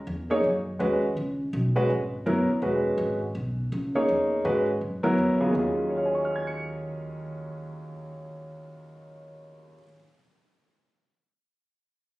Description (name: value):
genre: modal jazz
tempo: 165 BPM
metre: 4/4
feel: swing 64% on 8ths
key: Eb minor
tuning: A4 = 440 Hz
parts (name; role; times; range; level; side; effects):
- upright bass; bass; 0.0-9.8 s; Fb1 to Ab2; -32 LUFS; equal; none
- warm grand piano; accompaniment; 0.3-10.2 s; Eb2 to Db7; -25 LUFS; equal; none
room: moderate studio reverb, RT60 0.7 s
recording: recorded on a phone in the room, studio reverb, compression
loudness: -24 LUFS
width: side -18 dB against mid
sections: 0.0-5.5 A section; 5.5-8.5 B section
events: none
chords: 0.0 Dbm11; 5.5 Ebm11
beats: 0.07 0.44 0.80 | 1.17 1.53 1.90 2.26 | 2.63 2.99 3.35 3.72 | 4.08 4.45 4.81 5.18 | 5.54 5.90 6.27 6.63 | 7.00 7.36 7.72 8.09